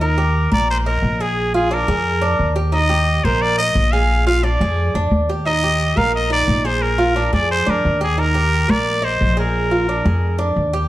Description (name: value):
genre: latin, Cuban son and guajira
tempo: 176 BPM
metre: 4/4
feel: straight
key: Eb major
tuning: A4 = 440 Hz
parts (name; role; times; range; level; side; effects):
- trumpet with straight mute; melody; 0.0-10.5 s; Ab4 to F5; -20 LUFS; equal; none
- Cuban tres; arpeggios; 0.0-10.9 s; D4 to Eb5; -21 LUFS; right 2 dB; none
- upright bass; bass; 0.0-10.9 s; Bb1 to F2; -19 LUFS; equal; none
room: moderate large studio reverb, RT60 1.2 s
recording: dark, warm production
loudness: -15 LUFS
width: side -15 dB against mid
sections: 0.0-10.9 A section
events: none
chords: 0.0 Eb; 1.4 Bb7; 2.7 Eb; 4.1 Bb7; 5.5 Eb; 6.8 Bb7; 8.2 Eb; 9.5 Bb7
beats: | 0.01 0.35 0.69 1.03 | 1.38 1.72 2.06 2.40 | 2.74 3.08 3.42 3.76 | 4.10 4.44 4.78 5.12 | 5.46 5.80 6.14 6.48 | 6.83 7.17 7.51 7.85 | 8.19 8.53 8.87 9.21 | 9.55 9.89 10.23 10.57